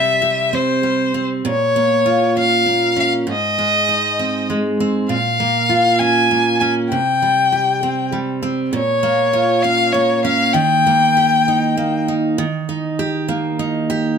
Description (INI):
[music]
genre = pop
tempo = 66 BPM (dotted quarters)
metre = 6/8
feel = straight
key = unclear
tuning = A4 = 440 Hz
[part]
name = clear violin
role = melody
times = 0.0-12.1 s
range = C5 to Ab5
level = -16 LUFS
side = left 2 dB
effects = none
[part]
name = picked steel-string acoustic guitar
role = accompaniment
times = 0.0-14.2 s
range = Ab2 to G4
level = -18 LUFS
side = right 2 dB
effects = none
[sound]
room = moderate echo chamber reverb, RT60 1.4 s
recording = none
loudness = -14 LUFS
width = side -7 dB against mid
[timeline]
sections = 0.0-12.4 A section; 12.4-14.2 B section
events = none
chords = 0.0 C; 1.4 Bbm; 3.3 Ab; 5.1 Bbm; 6.9 C5; 8.7 Bbm; 10.6 Eb